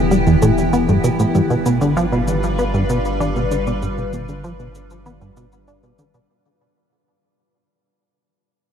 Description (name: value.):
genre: ambient, sequencer-driven space music.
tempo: 97 BPM.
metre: 4/4.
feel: straight.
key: unclear.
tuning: A4 = 440 Hz.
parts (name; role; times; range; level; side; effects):
evolving wavetable pad; sustained chords; 0.0-6.3 s; E3 to B4; -21 LUFS; left 2 dB; chorus, built-in reverb, phaser.
round analog bass; bass; 0.0-6.3 s; E1 to G1; -26 LUFS; right 1 dB; none.
plucky analog bass; riff; 0.1-6.2 s; E2 to D4; -18 LUFS; right 1 dB; analog chorus, ping-pong delay.
electronic shaker and toms; percussion; 0.1-6.3 s; none; -26 LUFS; left 3 dB; ping-pong delay.
room: moderate huge ambient reverb, RT60 7.6 s.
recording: dark, warm production.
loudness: -15 LUFS.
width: side -8 dB against mid.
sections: 0.0-6.3 A section.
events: fade-out 0.0-6.3; filter sweep on analog synth bass 0.0-6.3.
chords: 0.0 Em; 1.3 G7.